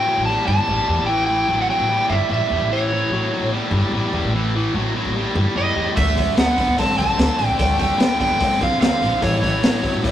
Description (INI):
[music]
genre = blues rock power trio and southern rock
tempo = 148 BPM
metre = 4/4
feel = straight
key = unclear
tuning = A4 = 440 Hz
[part]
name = overdriven slide guitar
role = melody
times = 0.0-10.0 s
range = C#5 to A5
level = -20 LUFS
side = equal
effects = none
[part]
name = sludgy distorted guitar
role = riff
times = 0.0-10.1 s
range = A2 to C4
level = -22 LUFS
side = left 1 dB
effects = overdrive
[part]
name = upright bass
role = bass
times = 0.0-10.1 s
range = G1 to F#2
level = -23 LUFS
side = equal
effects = none
[part]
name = overdriven tonewheel organ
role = sustained chords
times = 6.0-10.1 s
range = C#4 to C#5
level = -35 LUFS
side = right 2 dB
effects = none
[part]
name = raw garage drum kit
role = drums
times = 6.0-10.1 s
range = hi-hat, kick drum, snare drum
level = -20 LUFS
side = left 1 dB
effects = none
[sound]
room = moderate stone room reverb, RT60 1.4 s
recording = rough rehearsal-room recording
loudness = -16 LUFS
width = side -11 dB against mid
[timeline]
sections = 0.0-10.1 A section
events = none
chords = 0.0 A7(no3); 6.0 D7; 7.6 Dm7; 9.2 A7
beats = 0.27 0.68 | 1.08 1.49 1.90 2.31 | 2.71 3.12 3.52 3.93 | 4.34 4.75 5.15 5.56 | 5.96 6.37 6.78 7.19 | 7.59 8.00 8.41 8.81 | 9.22 9.63 10.03